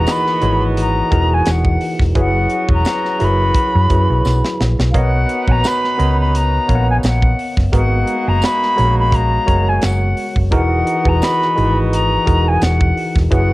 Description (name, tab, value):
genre	lush 1970s-style soul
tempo	86 BPM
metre	4/4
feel	swing 54% on 16ths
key	unclear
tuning	A4 = 440 Hz
part	silver concert flute	melody	0.0-13.5 s	E#5 to B5	-19 LUFS	left 1 dB	cassette tape
part	tine electric piano	accompaniment	0.0-13.5 s	E3 to F#5	-20 LUFS	equal	overdrive, fast stereo tremolo, cassette tape
part	warm horn section	stabs	0.0-13.5 s	A#3 to B4	-26 LUFS	right 1 dB	cassette tape
part	hollow-body short-scale fingered electric bass	bass	0.0-13.5 s	E1 to F#2	-16 LUFS	equal	none
part	tight funk drum kit	drums	0.1-13.5 s	hi-hat, kick drum, snare drum	-18 LUFS	equal	cassette tape
part	tambourine	percussion	0.1-12.8 s	none	-35 LUFS	right 4 dB	none
room	studio reverb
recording	home recording on cassette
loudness	-13 LUFS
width	side -18 dB against mid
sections	0.0-13.5 A section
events	drum fill 4.2-4.9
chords	0.0 Emaj9#11; 2.2 F#9sus4; 4.9 Bmaj9; 7.7 G#m9; 10.5 Emaj9#11